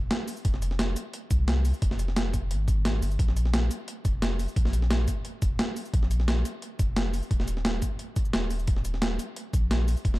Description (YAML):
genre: liquid drum and bass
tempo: 175 BPM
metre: 4/4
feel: straight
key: unclear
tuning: A4 = 440 Hz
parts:
  - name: warm sub bass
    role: bass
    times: 0.0-10.2 s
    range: Eb1 to C2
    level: -27 LUFS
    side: equal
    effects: none
  - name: breakbeat sampler-style drum kit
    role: drums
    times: 0.1-10.2 s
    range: hi-hat, shaker, snare drum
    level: -30 LUFS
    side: equal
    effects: overdrive
  - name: electronic kick drum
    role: drums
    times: 0.4-10.1 s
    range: none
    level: -27 LUFS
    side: equal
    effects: overdrive
room: little or no reverb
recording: dark, warm production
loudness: -24 LUFS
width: side -18 dB against mid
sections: 0.0-10.2 A section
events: none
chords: none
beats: 0.11 | 0.45 0.79 1.14 1.48 | 1.82 2.17 2.51 2.85 | 3.19 3.54 3.88 4.22 | 4.57 4.91 5.25 5.59 | 5.94 6.28 6.62 6.96 | 7.31 7.65 7.99 8.34 | 8.68 9.02 9.37 9.71 | 10.05